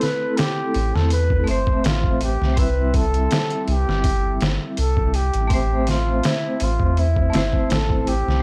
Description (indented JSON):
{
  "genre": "trip hop",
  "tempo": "82 BPM",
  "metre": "4/4",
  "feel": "swing 53% on 16ths",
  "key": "A minor",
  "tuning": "A4 = 439 Hz",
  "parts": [
    { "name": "trumpet with bucket mute", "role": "melody", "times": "0.0-8.4 s", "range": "E4 to C5", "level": "-27 LUFS", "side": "equal", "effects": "tape echo" },
    { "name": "vibraphone with medium hard mallets", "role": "accompaniment", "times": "0.0-8.4 s", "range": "G3 to E5", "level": "-28 LUFS", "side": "equal", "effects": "tremolo, tape echo" },
    { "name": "trip hop sampler-style drum kit", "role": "drums", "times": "0.0-8.4 s", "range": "hi-hat, kick drum, snare drum", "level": "-25 LUFS", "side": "equal", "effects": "overdrive" },
    { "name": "soft dub sub bass", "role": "bass", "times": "0.8-8.4 s", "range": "G1 to E2", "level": "-23 LUFS", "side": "equal", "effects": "none" }
  ],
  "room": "little or no reverb",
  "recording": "dry, gritty hardware recording, vinyl crackle",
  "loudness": "-20 LUFS",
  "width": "mono",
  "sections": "0.0-8.4 A section",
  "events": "none",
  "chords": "0.0 Am"
}